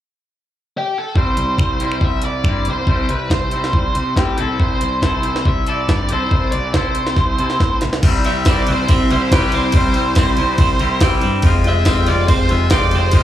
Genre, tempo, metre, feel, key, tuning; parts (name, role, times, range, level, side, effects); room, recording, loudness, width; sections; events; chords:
indie rock; 140 BPM; 4/4; straight; C major; A4 = 436 Hz
octave-fuzz lead guitar; melody; 0.8-13.2 s; G4 to E5; -21 LUFS; right 2 dB; distortion, slapback echo
raw garage guitar; riff; 1.2-13.2 s; G3 to A4; -22 LUFS; left 6 dB; overdrive, slapback echo
fuzz picked electric bass; bass; 1.2-13.2 s; F1 to C3; -20 LUFS; equal; overdrive
jungle sampler-style drum kit; drums; 1.2-13.2 s; crash cymbal, finger snaps, hi-hat, kick drum, ride cymbal, snare drum; -16 LUFS; equal
warm analog pad; sustained chords; 8.0-13.2 s; Ab3 to C6; -29 LUFS; left 1 dB; wide subtle chorus
biting overdriven guitar; riff; 8.0-13.2 s; C3 to G4; -23 LUFS; right 6 dB; wide subtle chorus, slapback echo
tambourine; percussion; 8.5-12.8 s; -35 LUFS; right 2 dB
little or no reverb; live gig heard through the venue's PA, club reverb; -14 LUFS; side -12 dB against mid
0.0-1.2 A section; 1.2-8.0 B section; 8.0-13.2 C section
drum fill 7.2-8.0
0.0 N.C.; 1.2 C; 11.4 Fmadd9